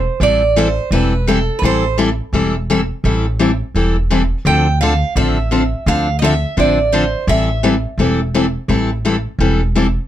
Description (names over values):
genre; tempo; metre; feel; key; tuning
acoustic string swing (jazz manouche); 170 BPM; 4/4; swing 61% on 8ths; A minor; A4 = 440 Hz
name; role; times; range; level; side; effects
picked steel-string acoustic guitar; melody; 0.0-2.0, 4.5-7.6 s; A4 to G5; -18 LUFS; right 4 dB; none
upright bass; bass; 0.0-10.0 s; E1 to D2; -18 LUFS; right 1 dB; none
picked steel-string acoustic guitar; accompaniment; 0.2-9.9 s; D3 to A4; -16 LUFS; left 3 dB; none
room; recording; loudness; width
light reverb; none; -13 LUFS; side -12 dB against mid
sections
0.0-10.1 A section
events
none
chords
0.0 Am7; 4.5 Dm7; 7.3 Am7